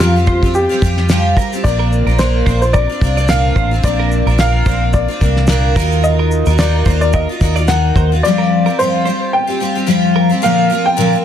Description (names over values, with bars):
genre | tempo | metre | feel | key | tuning
acoustic pop | 109 BPM | 4/4 | swing 55% on 16ths | Bb major | A4 = 441 Hz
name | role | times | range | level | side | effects
dark upright piano | melody | 0.0-11.2 s | F4 to G5 | -18 LUFS | left 1 dB | plate reverb, ping-pong delay
picked twelve-string acoustic guitar | accompaniment | 0.0-11.2 s | F2 to G4 | -16 LUFS | left 1 dB | double-tracked left and right
direct-recorded clean electric guitar | arpeggios | 0.0-10.3 s | Bb4 to D5 | -25 LUFS | right 8 dB | analog chorus, plate reverb
vintage muted fingered electric bass | bass | 0.0-8.2 s | A1 to F2 | -15 LUFS | equal | none
cloth-damped thuddy drum kit | drums | 0.0-8.1 s | kick drum, shaker, snare drum | -16 LUFS | equal | none
room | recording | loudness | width
moderate studio ambience, RT60 0.5 s | dense, heavily limited modern master | -11 LUFS | side -10 dB against mid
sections
0.0-1.6 A section; 1.6-10.4 B section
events
none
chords
0.0 Fsus2; 1.6 Bbadd9; 5.8 Ebmadd9; 8.2 Fsus2; 10.4 Bbadd9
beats
0.00 0.54 1.09 | 1.64 2.19 2.74 3.29 | 3.84 4.39 4.94 5.49 | 6.04 6.58 7.13 7.68 | 8.23 8.78 9.33 9.88 | 10.43 10.98